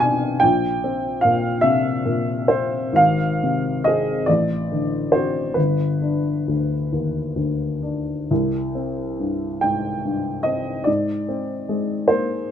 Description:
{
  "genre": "classical, romantic nocturne for solo piano",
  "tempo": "42-50 BPM (dotted quarters)",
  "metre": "12/8",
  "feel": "rubato",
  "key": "C minor",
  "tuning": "A4 = 443 Hz",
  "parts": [
    { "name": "dark upright piano", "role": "solo", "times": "0.0-12.5 s", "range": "G1 to Ab5", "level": "-19 LUFS", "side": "left 1 dB", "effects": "none" }
  ],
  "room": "light reverb",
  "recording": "close, detailed microphones",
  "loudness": "-19 LUFS",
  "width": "side -9 dB against mid",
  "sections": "0.0-12.5 A section",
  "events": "none",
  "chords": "0.4 C7/Bb; 3.0 Fm/Ab; 4.3 D7/A; 5.6 G; 8.3 C5; 10.9 Ab",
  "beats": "0.42 1.63 | 2.99 4.29 5.57 6.92 | 8.30 9.64 10.88 12.10"
}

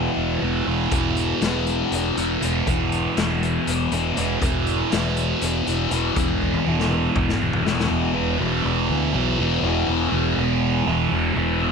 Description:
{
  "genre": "psychedelic rock",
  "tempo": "241 BPM (eighths)",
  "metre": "7/8",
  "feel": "straight",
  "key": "unclear",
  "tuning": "A4 = 440 Hz",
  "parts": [
    { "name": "thick fuzz guitar", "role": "riff", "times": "0.0-11.7 s", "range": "E2 to E3", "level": "-21 LUFS", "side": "equal", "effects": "distortion, phaser" },
    { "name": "fuzz fingered electric bass", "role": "bass", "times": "0.0-11.7 s", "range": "E1 to D2", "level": "-25 LUFS", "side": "equal", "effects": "overdrive" },
    { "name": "raw garage drum kit", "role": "drums", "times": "0.9-7.9 s", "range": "hi-hat, kick drum, snare drum, toms", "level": "-26 LUFS", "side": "left 3 dB", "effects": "none" }
  ],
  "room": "light reverb, small room ambience",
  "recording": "1960s-style stereo",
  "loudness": "-19 LUFS",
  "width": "side -5 dB against mid",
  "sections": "0.0-7.9 A section; 7.9-11.7 B section",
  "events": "drum fill 6.4-7.9",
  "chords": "0.0 E5",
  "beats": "0.17 0.42 0.67 | 0.92 1.17 1.42 1.67 1.92 2.17 2.42 | 2.67 2.92 3.17 3.42 3.67 3.92 4.17 | 4.42 4.67 4.92 5.17 5.42 5.67 5.92 | 6.17 6.42 6.67 6.91 7.16 7.41 7.66 | 7.91 8.16 8.40 8.65 8.90 9.15 9.40 | 9.64 9.89 10.14 10.39 10.63 10.88 11.13 | 11.37 11.62"
}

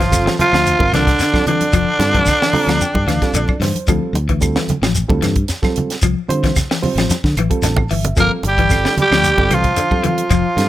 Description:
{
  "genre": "afrobeat",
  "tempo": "112 BPM",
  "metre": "4/4",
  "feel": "straight",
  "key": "G dorian",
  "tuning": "A4 = 443 Hz",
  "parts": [
    { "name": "raspy tenor saxophone", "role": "melody", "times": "0.0-3.6, 8.2-10.7 s", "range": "D4 to Bb4", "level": "-16 LUFS", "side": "equal", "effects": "none" },
    { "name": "bright bass trombone", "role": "second line", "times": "0.0-3.6, 8.2-10.7 s", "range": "D3 to Bb3", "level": "-23 LUFS", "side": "right 5 dB", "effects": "plate reverb" },
    { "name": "clean electric guitar", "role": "arpeggios", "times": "0.0-10.5 s", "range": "D3 to F3", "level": "-22 LUFS", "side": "left 8 dB", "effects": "none" },
    { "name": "fingered electric bass", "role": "bass", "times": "0.0-10.7 s", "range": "F1 to D3", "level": "-19 LUFS", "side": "equal", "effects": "none" },
    { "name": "tight funk drum kit", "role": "drums", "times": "0.0-10.7 s", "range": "hi-hat, kick drum, snare drum", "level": "-20 LUFS", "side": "equal", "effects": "none" },
    { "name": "reed electric piano", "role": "accompaniment", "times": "0.1-10.7 s", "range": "G3 to Bb5", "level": "-23 LUFS", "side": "right 5 dB", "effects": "none" },
    { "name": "claves", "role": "percussion", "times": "0.1-10.5 s", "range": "none", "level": "-29 LUFS", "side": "right 7 dB", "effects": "none" },
    { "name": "congas", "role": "percussion", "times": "0.1-10.7 s", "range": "none", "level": "-23 LUFS", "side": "right 2 dB", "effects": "none" },
    { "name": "shekere", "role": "percussion", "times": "0.1-10.7 s", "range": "none", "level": "-22 LUFS", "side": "left 1 dB", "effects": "none" }
  ],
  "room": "light reverb",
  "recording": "none",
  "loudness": "-13 LUFS",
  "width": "side -14 dB against mid",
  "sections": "0.0-10.7 A section",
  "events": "reed electric piano fill 2.3-3.9, 7.4-8.2; drum fill 7.1-8.2",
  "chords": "0.0 Gm7; 3.9 Dm7; 8.2 G7(no3)",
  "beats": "0.12 0.66 1.20 | 1.73 2.27 2.81 3.35 | 3.88 4.42 4.95 5.49 | 6.03 6.56 7.10 7.63 | 8.17 8.70 9.24 9.78 | 10.31"
}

